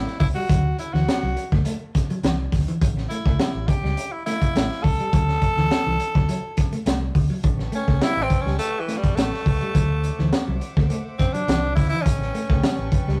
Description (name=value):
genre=funk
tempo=104 BPM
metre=4/4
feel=straight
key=A mixolydian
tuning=A4 = 439 Hz
part: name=growling tenor saxophone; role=melody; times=0.0-13.2 s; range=E3 to A4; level=-29 LUFS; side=equal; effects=none
part: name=vintage muted fingered electric bass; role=bass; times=0.0-13.2 s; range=A1 to D2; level=-27 LUFS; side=equal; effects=none
part: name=crunchy breakbeat drum kit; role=drums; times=0.1-13.2 s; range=hi-hat, kick drum, snare drum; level=-24 LUFS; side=equal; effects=none
part: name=semi-hollow electric guitar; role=riff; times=0.2-13.2 s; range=E3 to A3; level=-32 LUFS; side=equal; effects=spring reverb
part: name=warm studio string section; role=sustained chords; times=7.4-13.2 s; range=B4 to D6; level=-40 LUFS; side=equal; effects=none
room=light reverb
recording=rough rehearsal-room recording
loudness=-22 LUFS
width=mono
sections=0.0-7.4 A section; 7.4-13.2 B section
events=tenor saxophone solo 7.4-13.2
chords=0.5 D9; 2.8 A7; 5.1 D9; 7.4 A9; 9.8 D9; 12.1 A9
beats=| 0.49 1.07 1.65 2.23 | 2.81 3.39 3.97 4.55 | 5.13 5.71 6.29 6.86 | 7.44 8.02 8.60 9.17 | 9.75 10.33 10.90 11.48 | 12.06 12.63